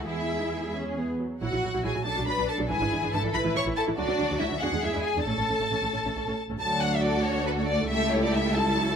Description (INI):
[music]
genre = quick classical-period movement for string orchestra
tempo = 93 BPM (dotted quarters)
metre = 6/8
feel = rubato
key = A major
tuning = A4 = 440 Hz
[part]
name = rich symphonic violin section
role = second line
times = 0.0-9.0 s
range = D4 to C#5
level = -32 LUFS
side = left 2 dB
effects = none
[part]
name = warm symphonic viola section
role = accompaniment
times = 0.0-9.0 s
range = E3 to E4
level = -30 LUFS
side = right 1 dB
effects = none
[part]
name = rich symphonic cello section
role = bass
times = 0.0-9.0 s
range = C#2 to A4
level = -33 LUFS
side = right 3 dB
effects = none
[part]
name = rich symphonic double bass section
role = bass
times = 0.0-9.0 s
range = G#1 to E2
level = -32 LUFS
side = right 3 dB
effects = none
[part]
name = warm symphonic violin section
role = melody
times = 0.1-9.0 s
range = B4 to C#6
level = -30 LUFS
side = left 3 dB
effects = none
[sound]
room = light reverb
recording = close, detailed microphones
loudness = -24 LUFS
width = side -7 dB against mid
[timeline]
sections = 0.0-6.6 A section; 6.6-9.0 B section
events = none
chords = 0.1 E; 1.4 F#7/A#; 2.1 Bm; 2.7 E7/G#; 3.3 A5; 4.0 D; 4.6 E7; 5.3 A; 6.6 D; 7.9 A7/C#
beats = | 0.08 0.75 | 1.42 2.06 | 2.70 3.34 | 3.98 4.62 | 5.27 5.94 | 6.61 7.25 | 7.89 8.56